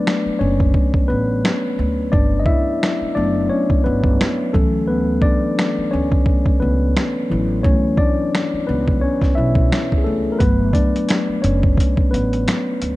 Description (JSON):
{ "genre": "lo-fi hip hop", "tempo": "87 BPM", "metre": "4/4", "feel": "swing 55% on 16ths", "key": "G lydian", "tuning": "A4 = 440 Hz", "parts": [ { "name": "mellow tine electric piano", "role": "accompaniment", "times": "0.0-13.0 s", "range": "E3 to E5", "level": "-19 LUFS", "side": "left 1 dB", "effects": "low-pass filter" }, { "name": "dusty soul sampler-style drum kit", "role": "drums", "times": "0.1-13.0 s", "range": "finger snaps, hi-hat, kick drum, snare drum", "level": "-18 LUFS", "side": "equal", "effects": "overdrive, vintage 12-bit sampler grit" }, { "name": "upright bass", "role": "bass", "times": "0.3-13.0 s", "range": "F#1 to D2", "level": "-22 LUFS", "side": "equal", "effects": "none" } ], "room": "digital ambience", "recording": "dark, warm production", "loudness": "-15 LUFS", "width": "side -18 dB against mid", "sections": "0.0-13.0 A section", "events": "break 0.0-10.4; tine electric piano solo 0.0-13.0", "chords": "0.0 Gmaj9; 4.5 Dmaj9; 10.4 Gmaj9" }